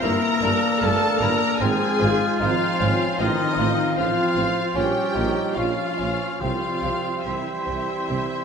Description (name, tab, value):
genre	classical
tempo	70-79 BPM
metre	4/4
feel	rubato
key	F minor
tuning	A4 = 439 Hz
part	rich studio violin section	melody	0.0-8.4 s	Eb5 to Bb5	-28 LUFS	left 2 dB	none
part	concert flute	second line	0.0-8.4 s	C6 to F6	-30 LUFS	left 4 dB	none
part	mellow clarinet	second line	0.0-8.4 s	Bb3 to G4	-31 LUFS	equal	none
part	mellow cor anglais	second line	0.0-8.4 s	Bb4 to Db5	-32 LUFS	right 2 dB	none
part	warm studio violin section	second line	0.0-8.2 s	Bb3 to F4	-34 LUFS	left 3 dB	none
part	clear bassoon	accompaniment	0.0-8.4 s	C4 to F4	-29 LUFS	right 3 dB	none
part	warm studio viola section	accompaniment	0.0-8.4 s	Eb4 to Bb4	-28 LUFS	equal	none
part	dark French horn section	sustained chords	0.0-8.4 s	Eb3 to Bb3	-28 LUFS	left 5 dB	none
part	warm trombone section	sustained chords	0.0-8.4 s	E3 to Db4	-32 LUFS	right 3 dB	none
part	mellow tuba	bass	0.0-8.3 s	G1 to C2	-32 LUFS	right 4 dB	none
part	rich studio cello section	bass	0.0-8.2 s	G2 to C3	-31 LUFS	right 2 dB	none
part	warm studio double bass section	bass	0.0-8.2 s	G1 to C2	-32 LUFS	right 3 dB	none
part	timpani	percussion	6.4-7.6 s	C3	-39 LUFS	right 2 dB	none
room	wet scoring stage reverb, RT60 1.8 s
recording	none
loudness	-20 LUFS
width	side -6 dB against mid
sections	0.0-8.4 A section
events	none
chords	0.0 Edim/G; 1.6 Fm/Ab; 3.2 F7/A; 4.8 Bbm; 6.4 C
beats	| 0.02 0.81 1.60 2.41 | 3.20 3.97 4.76 5.57 | 6.42 7.25 8.10